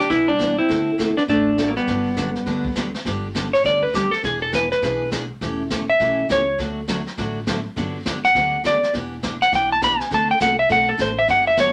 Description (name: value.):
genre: country, western swing.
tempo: 204 BPM.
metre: 4/4.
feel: swing 63% on 8ths.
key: G major.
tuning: A4 = 439 Hz.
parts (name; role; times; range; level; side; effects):
clean lap steel guitar; melody; 0.0-11.7 s; Bb3 to B5; -20 LUFS; equal; none.
archtop guitar, miked and amplified; second line; 0.0-2.9 s; F#3 to C4; -31 LUFS; equal; none.
jazz brush drum kit; drums; 0.0-11.7 s; brushed snare drum, hi-hat, kick drum, snare drum; -32 LUFS; equal; none.
picked steel-string acoustic guitar; accompaniment; 0.1-11.7 s; D3 to A4; -29 LUFS; equal; none.
upright bass; bass; 0.1-11.7 s; E1 to D2; -36 LUFS; equal; none.
room: moderate studio ambience, RT60 0.5 s.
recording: none.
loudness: -20 LUFS.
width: mono.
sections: 0.0-3.1 A section; 3.1-11.7 B section.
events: electric slide guitar solo 3.1-11.7.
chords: 0.0 Em7; 0.7 D7; 1.9 Gmaj7; 3.1 G; 4.2 E7; 5.4 A7/E; 6.6 D; 7.8 Gmaj7; 8.9 Em7; 10.1 D7.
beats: 0.10 0.40 | 0.69 0.99 1.28 1.58 | 1.88 2.17 2.47 2.76 | 3.06 3.35 3.65 3.94 | 4.24 4.53 4.82 5.12 | 5.41 5.71 6.00 6.29 | 6.59 6.88 7.18 7.47 | 7.76 8.06 8.35 8.65 | 8.94 9.23 9.53 9.82 | 10.11 10.40 10.70 10.99 | 11.28 11.58.